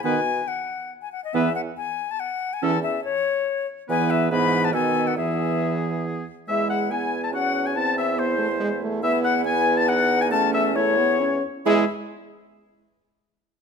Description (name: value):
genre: quick classical-period movement for wind quintet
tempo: 140 BPM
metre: 3/4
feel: straight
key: E major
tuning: A4 = 441 Hz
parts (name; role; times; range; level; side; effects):
- concert flute; melody; 0.0-11.9 s; C5 to B5; -24 LUFS; left 8 dB; none
- mellow French horn; accompaniment; 0.0-11.8 s; D#3 to C#4; -26 LUFS; right 1 dB; none
- warm clarinet; accompaniment; 0.0-11.8 s; B3 to F#4; -28 LUFS; right 13 dB; none
- mellow bassoon; bass; 0.0-11.8 s; E2 to B2; -28 LUFS; right 3 dB; none
- clear oboe; second line; 0.1-11.9 s; G#4 to A5; -28 LUFS; left 2 dB; none
room: moderate recital hall reverb, RT60 1.5 s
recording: close, detailed microphones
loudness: -20 LUFS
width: side -6 dB against mid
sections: 0.0-6.5 A section; 6.5-11.7 B section; 11.7-13.0 C section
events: none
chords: 0.0 B5; 1.3 E5; 2.6 A/E; 3.9 E; 4.3 E/G#; 4.7 B7; 5.2 E; 7.8 Am/E; 9.0 E5; 10.3 A/E; 11.7 E